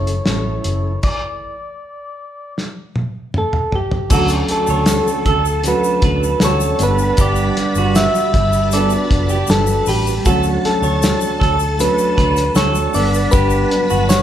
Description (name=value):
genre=indie pop, bedroom pop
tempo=78 BPM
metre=4/4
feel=straight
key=D major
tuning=A4 = 435 Hz
part: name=soft electric-piano-like synth keys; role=melody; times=0.0-14.2 s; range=F#4 to E5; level=-20 LUFS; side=equal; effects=chorus, tremolo
part: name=mellow tonewheel organ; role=accompaniment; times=0.0-14.2 s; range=F#3 to F#5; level=-24 LUFS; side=right 4 dB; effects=none
part: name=nylon-string guitar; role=accompaniment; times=0.0-14.2 s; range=G2 to A4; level=-25 LUFS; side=left 2 dB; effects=warbly pitch drift
part: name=vintage muted fingered electric bass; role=bass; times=0.0-14.2 s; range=F#1 to D2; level=-20 LUFS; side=equal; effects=none
part: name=cloth-damped thuddy drum kit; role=drums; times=0.1-14.2 s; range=crash cymbal, hi-hat, kick drum, snare drum, toms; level=-18 LUFS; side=equal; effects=none
part: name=electric guitar through a small old amp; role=second line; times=4.1-14.2 s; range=F#4 to C#5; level=-23 LUFS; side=right 4 dB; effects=analog delay
part: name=string machine, full ensemble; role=sustained chords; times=4.1-14.2 s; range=G3 to B5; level=-25 LUFS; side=equal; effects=phaser, ensemble chorus
part: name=tube shaker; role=percussion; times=4.1-14.2 s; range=none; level=-30 LUFS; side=left 6 dB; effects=none
room=moderate large studio reverb, RT60 1.2 s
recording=band playing live in one room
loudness=-14 LUFS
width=side -10 dB against mid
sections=0.0-4.1 A section; 4.1-14.2 B section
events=stop 1.0-4.1; drum fill 2.6-4.1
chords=0.0 F#m7; 1.0 N.C.; 4.1 Dmaj7; 6.8 Gmaj7; 10.3 Dmaj7; 12.9 Gmaj7